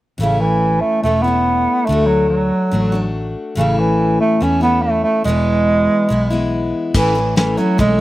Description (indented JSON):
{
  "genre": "honky-tonk and classic country",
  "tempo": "142 BPM",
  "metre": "4/4",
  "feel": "straight",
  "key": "A major",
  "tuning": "A4 = 440 Hz",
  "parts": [
    { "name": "clear bass clarinet", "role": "melody", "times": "0.2-8.0 s", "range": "C#3 to C#4", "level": "-15 LUFS", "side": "right 2 dB", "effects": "none" },
    { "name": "picked steel-string acoustic guitar", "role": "accompaniment", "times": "0.2-8.0 s", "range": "E2 to F#4", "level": "-20 LUFS", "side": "left 3 dB", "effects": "none" },
    { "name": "vintage muted fingered electric bass", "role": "bass", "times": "0.2-8.0 s", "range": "E1 to E2", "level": "-20 LUFS", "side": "equal", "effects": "none" },
    { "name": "soft brush drum kit", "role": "drums", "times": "6.9-7.9 s", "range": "crash cymbal, hi-hat, kick drum, snare drum", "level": "-18 LUFS", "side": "left 1 dB", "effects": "none" }
  ],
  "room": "little or no reverb",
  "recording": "recorded outdoors, with no room sound",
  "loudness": "-14 LUFS",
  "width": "side -16 dB against mid",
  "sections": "0.2-6.9 A section; 6.9-8.0 B section",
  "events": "none",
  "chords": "0.2 A; 1.9 D; 3.6 A; 5.3 E; 6.9 A",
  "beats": "| 0.20 0.62 1.04 1.46 | 1.88 2.30 2.73 3.15 | 3.57 3.99 4.41 4.83 | 5.26 5.68 6.10 6.52 | 6.94 7.37 7.79"
}